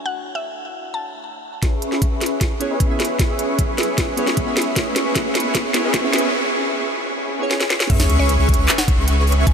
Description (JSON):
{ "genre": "future bass", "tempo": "153 BPM", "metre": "4/4", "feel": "half-time", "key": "C# phrygian", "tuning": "A4 = 439 Hz", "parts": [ { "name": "glassy digital keys", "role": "accompaniment", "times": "0.0-7.9 s", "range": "A3 to E5", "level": "-26 LUFS", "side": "right 2 dB", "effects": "chorus, phaser, sidechain pumping, diffuse ambient delay" }, { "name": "mallet-like synth pluck", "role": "melody", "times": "0.1-1.1, 7.9-9.5 s", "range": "C#5 to A5", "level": "-30 LUFS", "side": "left 1 dB", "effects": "chorus, sidechain pumping, ping-pong delay" }, { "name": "soft supersaw", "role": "riff", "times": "1.6-9.5 s", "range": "C#4 to C#6", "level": "-22 LUFS", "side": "equal", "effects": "lush chorus, sidechain pumping, low-pass filter, diffuse ambient delay" }, { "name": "electronic kick drum", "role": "drums", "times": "1.6-9.5 s", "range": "none", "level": "-19 LUFS", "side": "equal", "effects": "none" }, { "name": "trap drum kit", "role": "drums", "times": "1.6-9.5 s", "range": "crash cymbal, handclaps, hi-hat, snare drum", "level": "-22 LUFS", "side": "equal", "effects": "low-pass filter on snare, low-pass filter on hats, low-pass filter on cymbals" }, { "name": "riser, swell and sub drop", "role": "sound effects", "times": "3.1-9.5 s", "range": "none", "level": "-28 LUFS", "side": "equal", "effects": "none" }, { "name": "airy dreamy lead", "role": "arpeggios", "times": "7.9-9.5 s", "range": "C#6", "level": "-28 LUFS", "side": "equal", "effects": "chorus, sidechain pumping" }, { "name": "saturated sub bass", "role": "bass", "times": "7.9-9.5 s", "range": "C#2", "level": "-17 LUFS", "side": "equal", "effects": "tube saturation, sidechain pumping" } ], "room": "wet huge ambient reverb, RT60 7.6 s", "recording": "dreamy mix soaked in reverb, high-pass filter", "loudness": "-17 LUFS", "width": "side -7 dB against mid", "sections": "0.0-1.6 A section; 1.6-7.9 B section; 7.9-9.5 C section", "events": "build-up 1.6-7.9; drum fill 1.6-6.3, 7.5-7.9; filter sweep on supersaw synth 1.6-7.9; filter sweep 1.6-7.9; riser 3.1-6.3; break 6.3-7.9; swell 7.2-7.9; drop 7.9-9.5; impact 7.9-9.5", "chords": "0.0 Dmaj7; 1.6 C#m7" }